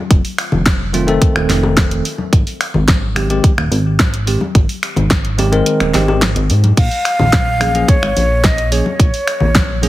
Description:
nu-disco, nu disco; 108 BPM; 4/4; straight; Bb dorian; A4 = 440 Hz
chorused synth bass; bass; 0.1-9.9 s; Eb1 to Ab2; -17 LUFS; equal; tube saturation
electronic kick drum; drums; 0.1-9.7 s; -13 LUFS; equal
pop drum kit; drums; 0.1-9.9 s; crash cymbal, finger snaps, hi-hat, snare drum; -18 LUFS; equal
congas and bongos; percussion; 0.5-9.9 s; -22 LUFS; left 3 dB
bell-like tine electric piano; accompaniment; 0.9-9.9 s; Eb3 to Bb4; -18 LUFS; moving between left 5 dB and right 6 dB; auto-pan, ping-pong delay
breathy mellow silver concert flute; melody; 6.8-9.9 s; Db5 to F5; -17 LUFS; left 1 dB; dub echo
digital ambience; heavily compressed radio sound, multiband compression; -12 LUFS; side -16 dB against mid
0.0-9.9 A section
kick drops out 5.7-6.8
0.0 F7; 2.1 Abmaj7; 6.8 Bbm7

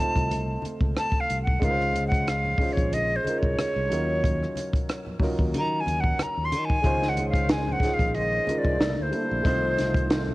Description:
R&B, neo-soul; 92 BPM; 4/4; swing 54% on 16ths; Eb dorian; A4 = 442 Hz
breathy silver concert flute; melody; 0.0-10.3 s; C5 to C6; -27 LUFS; equal; cassette tape
dark concert grand piano; accompaniment; 0.0-10.3 s; Gb3 to C5; -30 LUFS; right 1 dB; cassette tape
modern bright fingered electric bass; bass; 0.2-10.3 s; Bb1 to Eb3; -29 LUFS; equal
compact cocktail drum kit; drums; 0.2-10.3 s; hi-hat, kick drum, rim click, snare drum; -26 LUFS; equal; cassette tape
congas; percussion; 0.3-10.3 s; -40 LUFS; left 2 dB
overdriven tonewheel organ; sustained chords; 6.8-10.3 s; D3 to C5; -34 LUFS; equal; slow rotary speaker, chorus vibrato, cassette tape
light reverb, studio reverb; home recording on cassette; -22 LUFS; side -19 dB against mid
0.0-10.3 A section
flute solo 0.0-10.3
0.0 F7/C; 1.6 Bbm11; 3.9 Ebm9; 6.8 Dbmaj9; 8.8 C13; 9.4 F7/C

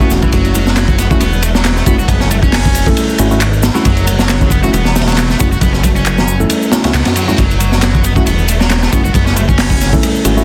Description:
breakbeat, breaks; 136 BPM; 4/4; swing 55% on 16ths; F# minor; A4 = 440 Hz
tight distorted guitar; riff; 0.0-9.9 s; E3 to F#4; -23 LUFS; equal; distortion, tape echo
tine electric piano; stabs; 0.0-10.4 s; A3 to A4; -20 LUFS; equal; tape echo
fat analog bass; bass; 0.0-10.4 s; E1 to F#2; -17 LUFS; equal
crunchy breakbeat drum kit; drums; 0.0-10.4 s; hi-hat, kick drum, ride cymbal, snare drum; -16 LUFS; equal
electronic shaker and handclaps; drums; 0.0-10.4 s; -24 LUFS; equal
congas; percussion; 0.2-10.4 s; -27 LUFS; equal
reverse cymbal; sound effects; 6.8-7.4 s; -27 LUFS; equal
light reverb; dense, heavily limited modern master; -12 LUFS; mono
0.0-10.4 A section
reverse cymbal 6.8-7.4
0.0 F#m7

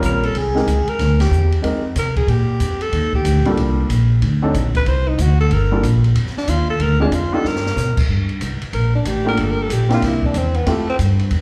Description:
jazz, small-group swing and bop; 186 BPM; 4/4; swing 64% on 8ths; G minor; A4 = 438 Hz
warm baby grand piano; accompaniment; 0.0-10.9 s; F#3 to Bb4; -23 LUFS; equal; slapback echo
upright bass; bass; 0.0-11.4 s; G1 to C3; -20 LUFS; equal
open jazz drum kit; drums; 0.0-11.4 s; crash cymbal, hi-hat, kick drum, ride cymbal, snare drum; -29 LUFS; equal
growling alto saxophone; melody; 0.1-11.0 s; A3 to C5; -25 LUFS; equal; slapback echo
light reverb; live gig heard through the venue's PA, club reverb; -18 LUFS; mono
0.0-8.1 A section; 8.1-11.4 B section
band accent 1.2; drum fill 7.5-7.8
0.4 Abmaj9; 1.6 Fm11; 2.3 Bb5; 2.9 Ebmaj9#11; 4.2 D7(no3); 5.5 Gm7; 6.8 Dm7b5; 7.5 G; 8.1 C5; 9.4 Gm7; 10.0 C7; 10.7 Fmaj9

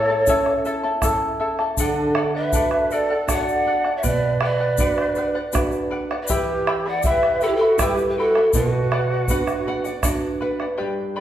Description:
andean folk, Andean ensemble; 80 BPM; 3/4; straight; B minor; A4 = 442 Hz
mellow hollow pan flute; melody; 0.0-10.4 s; G4 to F#5; -22 LUFS; equal
breathy mellow large quena; second line; 0.0-10.4 s; D4 to D5; -27 LUFS; right 2 dB
charango; accompaniment; 0.0-11.2 s; E4 to B5; -26 LUFS; left 2 dB
nylon-string guitar; accompaniment; 0.0-11.2 s; G2 to F#5; -26 LUFS; right 2 dB
bombo; percussion; 0.3-10.8 s; -26 LUFS; right 1 dB
tube shaker; percussion; 0.3-10.2 s; -31 LUFS; left 6 dB
wet large studio reverb, RT60 1.3 s; band playing live in one room; -18 LUFS; side -11 dB against mid
0.0-10.8 A section
nylon-string guitar fill 9.3-10.8
0.0 A; 1.8 D; 4.0 Bm; 6.3 Em; 8.5 Bm

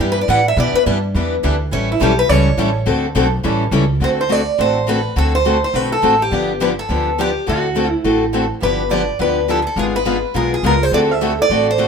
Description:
acoustic string swing (jazz manouche); 209 BPM; 4/4; swing 58% on 8ths; D mixolydian; A4 = 439 Hz
picked steel-string acoustic guitar; melody; 0.0-11.9 s; E4 to F#5; -17 LUFS; right 2 dB
picked steel-string acoustic guitar; accompaniment; 0.0-11.9 s; D3 to A4; -20 LUFS; left 6 dB
picked steel-string acoustic guitar; accompaniment; 0.0-11.9 s; D3 to B4; -23 LUFS; right 2 dB
upright bass; bass; 0.0-11.9 s; G1 to B2; -20 LUFS; right 1 dB
marimba with soft mallets; second line; 10.4-11.9 s; E#4 to C5; -21 LUFS; right 2 dB
moderate studio reverb, RT60 0.7 s; minimal, uncompressed stereo recording; -14 LUFS; side -6 dB against mid
0.0-4.0 A section; 4.0-11.9 B section
steel-string acoustic guitar solo 0.0-4.0
0.0 Em7; 1.7 A7; 2.9 D7; 3.4 A7; 4.0 D7; 6.3 G7; 7.5 D7; 8.6 G7; 9.8 G#dim7; 10.9 D7

